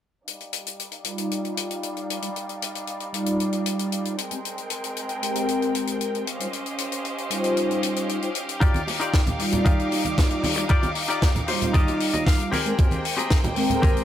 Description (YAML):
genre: nu-disco, nu disco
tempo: 115 BPM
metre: 4/4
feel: straight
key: Eb major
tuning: A4 = 440 Hz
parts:
  - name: bright symphonic violin section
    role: sustained chords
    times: 0.3-14.0 s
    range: G3 to D6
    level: -31 LUFS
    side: right 1 dB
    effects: sidechain pumping, low-pass filter
  - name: tight funk drum kit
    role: drums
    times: 0.3-14.0 s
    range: hi-hat, snare drum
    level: -29 LUFS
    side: left 4 dB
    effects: none
  - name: mellow synth brass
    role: accompaniment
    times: 1.0-14.0 s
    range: G3 to D6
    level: -26 LUFS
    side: equal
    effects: chorus, sidechain pumping, dub echo
  - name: direct-recorded clean electric guitar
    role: riff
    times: 8.6-14.0 s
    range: C4 to G5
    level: -28 LUFS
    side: left 3 dB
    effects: lush chorus, dub echo
  - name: electronic kick drum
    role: drums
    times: 8.6-13.9 s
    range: none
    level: -19 LUFS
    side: equal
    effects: none
  - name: bongos and congas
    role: percussion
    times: 8.6-13.9 s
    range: none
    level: -30 LUFS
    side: right 2 dB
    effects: none
room: light reverb, small room ambience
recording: none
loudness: -22 LUFS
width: side -11 dB against mid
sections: 0.3-14.0 A section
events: filter sweep on analog polysynth 0.3-14.0; filter sweep on violin section 0.3-14.0; clean electric guitar fill 11.2-12.8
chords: 0.3 Ebmaj9; 4.2 Abmaj9; 6.3 Dbmaj9#11; 8.6 Ebmaj9; 12.5 Abmaj9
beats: | 0.27 0.79 1.31 1.83 | 2.35 2.88 3.40 3.92 | 4.44 4.96 5.49 6.01 | 6.53 7.05 7.57 8.09 | 8.62 9.14 9.66 10.18 | 10.70 11.22 11.75 12.27 | 12.79 13.31 13.83